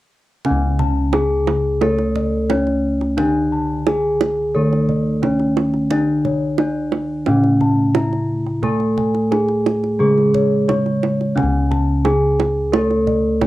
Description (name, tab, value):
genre	Javanese gamelan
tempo	88 BPM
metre	4/4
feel	straight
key	C# pelog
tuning	A4 = 440 Hz
part	kendang	percussion	0.4-13.5 s	none	-23 LUFS	right 7 dB	none
part	gamelan-type bronze metallophone	melody	0.5-13.5 s	C#4 to C#5	-19 LUFS	equal	cassette tape
part	gamelan-type bronze metallophone	accompaniment	0.5-13.5 s	C#3 to A3	-22 LUFS	right 1 dB	cassette tape
part	gamelan-type bossed gongs	arpeggios	0.5-13.5 s	C#5 to C#6	-28 LUFS	left 5 dB	cassette tape
part	gamelan-type bossed gongs	bass	0.5-13.5 s	C#2 to A4	-21 LUFS	left 1 dB	none
room	wet small room reverb, RT60 0.5 s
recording	home recording on cassette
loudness	-15 LUFS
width	side -16 dB against mid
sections	0.5-13.5 A section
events	none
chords	none